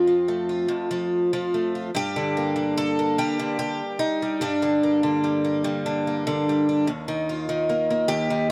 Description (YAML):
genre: folk, solo fingerstyle acoustic guitar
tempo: 49 BPM (dotted quarters)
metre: 6/8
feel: straight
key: G minor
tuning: A4 = 445 Hz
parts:
  - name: picked twelve-string acoustic guitar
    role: solo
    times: 0.0-8.5 s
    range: Eb2 to A4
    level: -24 LUFS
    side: equal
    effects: none
room: light reverb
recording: none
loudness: -24 LUFS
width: mono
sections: 0.0-8.5 A section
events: none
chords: 0.0 F; 1.9 Gm; 6.9 Ebsus2